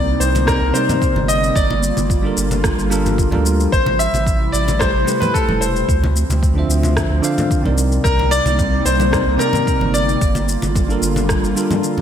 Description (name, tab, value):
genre	sunset chillout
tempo	111 BPM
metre	4/4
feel	straight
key	unclear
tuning	A4 = 440 Hz
part	bright grand piano	melody	0.0-11.0 s	A4 to E5	-19 LUFS	left 2 dB	wide subtle chorus, digital delay
part	bell-like tine electric piano	accompaniment	0.0-12.0 s	C3 to F5	-22 LUFS	equal	auto-pan, digital delay
part	airy breathy pad	sustained chords	0.0-12.0 s	C3 to F4	-24 LUFS	right 2 dB	chorus
part	round analog bass	bass	0.0-11.5 s	E1 to D2	-19 LUFS	equal	none
part	electronic shaker and rim click	drums	0.2-11.9 s	none	-26 LUFS	left 1 dB	studio ambience
part	bongos and congas	percussion	0.3-12.0 s	none	-24 LUFS	left 1 dB	none
part	electronic kick drum	drums	0.5-11.4 s	none	-20 LUFS	equal	studio ambience
room	light reverb, digital ambience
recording	bright 1980s-style digital production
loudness	-14 LUFS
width	side -9 dB against mid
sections	0.0-12.0 A section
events	break 11.8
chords	0.0 Cm9; 1.6 Gm9; 3.7 Am9; 5.9 Dm9; 7.8 Cm9; 10.2 Gm9